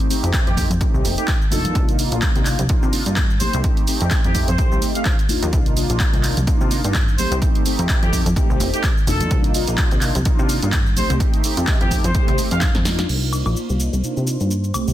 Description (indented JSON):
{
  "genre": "filtered disco house",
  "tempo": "127 BPM",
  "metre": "4/4",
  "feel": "swing 56% on 16ths",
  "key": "C dorian",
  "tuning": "A4 = 442 Hz",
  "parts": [
    { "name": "mellow synth brass", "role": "accompaniment", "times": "0.0-14.9 s", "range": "A3 to G4", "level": "-25 LUFS", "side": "equal", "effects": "chorus, phaser, vintage 12-bit sampler grit, sidechain pumping, low-pass filter" },
    { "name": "punchy analog drum machine", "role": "drums", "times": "0.0-14.9 s", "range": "crash cymbal, handclaps, hi-hat, shaker, snare drum, woodblock", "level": "-25 LUFS", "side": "right 1 dB", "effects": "sidechain pumping on hats, sidechain pumping on cymbals, sidechain pumping on perc" },
    { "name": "tambourine and congas", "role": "percussion", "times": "0.1-13.1 s", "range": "none", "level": "-31 LUFS", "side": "left 1 dB", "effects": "none" },
    { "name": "plucky analog bass", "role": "bass", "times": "0.2-14.9 s", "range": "F1 to C3", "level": "-22 LUFS", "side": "equal", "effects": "sidechain pumping, low-pass filter" },
    { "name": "electronic kick drum", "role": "drums", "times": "0.3-12.7 s", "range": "none", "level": "-19 LUFS", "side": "equal", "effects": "none" },
    { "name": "clear trumpet section", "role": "melody", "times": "0.5-12.7 s", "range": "G4 to F5", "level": "-28 LUFS", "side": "equal", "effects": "sidechain pumping, low-pass filter, tape echo" },
    { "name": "rich chamber violin section", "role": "sustained chords", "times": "13.1-14.9 s", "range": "C5 to C6", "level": "-39 LUFS", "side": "left 1 dB", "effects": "sidechain pumping, low-pass filter" }
  ],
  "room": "digital ambience",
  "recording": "dense, heavily limited modern master",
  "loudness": "-16 LUFS",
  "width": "side -13 dB against mid",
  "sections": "0.0-13.1 A section; 13.1-14.9 B section",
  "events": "filter sweep 0.0-13.1, 13.1-14.9; drum fill 12.6-13.1",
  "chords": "0.0 F9; 1.8 Cm11; 3.6 F9; 5.5 Cm11; 7.4 F9; 9.3 Cm11; 11.2 F9; 13.1 Cm11",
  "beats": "0.34 0.81 1.28 | 1.75 2.23 2.70 3.17 | 3.64 4.12 4.59 5.06 | 5.53 6.00 6.48 6.95 | 7.42 7.89 8.37 8.84 | 9.31 9.79 10.26 10.73 | 11.20 11.67 12.15 12.62 | 13.09 13.56 14.04 14.51"
}